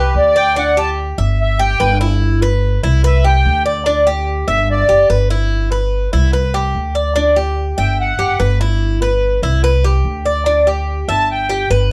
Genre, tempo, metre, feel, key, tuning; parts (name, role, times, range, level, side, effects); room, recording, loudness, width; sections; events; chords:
latin, Cuban son and guajira; 145 BPM; 4/4; straight; G major; A4 = 441 Hz
accordion; melody; 0.0-5.1, 7.8-8.4, 11.1-11.7 s; B4 to A5; -17 LUFS; equal; light tremolo tuning, slapback echo
Cuban tres; arpeggios; 0.0-11.9 s; D4 to E5; -20 LUFS; equal
upright bass; bass; 0.0-11.9 s; F#1 to D2; -18 LUFS; equal
moderate studio reverb, RT60 0.6 s; dark, warm production; -15 LUFS; mono
0.0-11.9 A section
accordion solo 0.0-11.9
0.0 C5; 0.6 Dsus4; 1.4 G6; 3.0 C5; 3.9 Dsus4; 4.7 G6; 6.3 C5; 7.2 Dsus4; 8.0 G6; 9.6 C5; 10.5 Dsus4; 11.3 G6